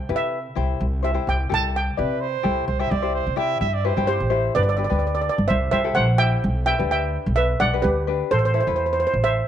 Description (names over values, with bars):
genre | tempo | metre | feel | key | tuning
calypso | 128 BPM | 4/4 | straight | unclear | A4 = 441 Hz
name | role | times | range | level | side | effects
steel pan | melody | 0.0-9.5 s | G4 to A5 | -22 LUFS | right 2 dB | none
tenor ukulele | accompaniment | 0.1-9.2 s | D4 to D5 | -27 LUFS | left 11 dB | none
upright bass | bass | 0.1-9.4 s | G1 to C3 | -23 LUFS | equal | none
mellow trumpet | second line | 2.0-4.6 s | B4 to E5 | -26 LUFS | right 9 dB | none
room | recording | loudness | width
moderate spring reverb, RT60 1.4 s, small room ambience | 1960s-style stereo with parts hard left and right | -19 LUFS | side -10 dB against mid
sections
0.0-2.7 A section; 2.7-4.6 B section; 4.6-9.5 C section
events
steel pan solo 0.0-2.7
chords
0.0 C; 4.6 G; 5.5 C; 6.4 G6/B; 8.3 Am